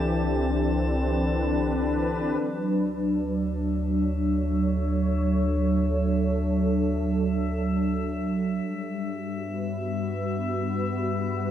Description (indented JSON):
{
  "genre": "ambient",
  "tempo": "free time",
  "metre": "none",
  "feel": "none",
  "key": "D major",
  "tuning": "A4 = 443 Hz",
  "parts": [
    { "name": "warm analog pad", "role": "sustained chords", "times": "0.0-11.5 s", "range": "E3 to C#5", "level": "-25 LUFS", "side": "equal", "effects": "chorus" },
    { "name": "warm sub bass", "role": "bass", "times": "0.0-11.5 s", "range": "C2 to G2", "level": "-29 LUFS", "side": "equal", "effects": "none" },
    { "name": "pedal harmonium", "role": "drone", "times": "0.0-2.5 s", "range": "D3", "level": "-36 LUFS", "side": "left 1 dB", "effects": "none" },
    { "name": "drifting glass-harmonics texture", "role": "texture", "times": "0.0-11.5 s", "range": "E5 to A5", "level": "-37 LUFS", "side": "left 2 dB", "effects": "chorus, built-in reverb" }
  ],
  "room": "wet concert hall reverb, RT60 2.3 s",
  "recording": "cassette tape",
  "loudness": "-24 LUFS",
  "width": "side -10 dB against mid",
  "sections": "0.0-2.4 A section; 2.4-11.5 B section",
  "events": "fade-in on synth texture 2.4-11.5",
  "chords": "0.0 Cmaj9; 2.4 Dmaj7; 8.6 Gmaj7"
}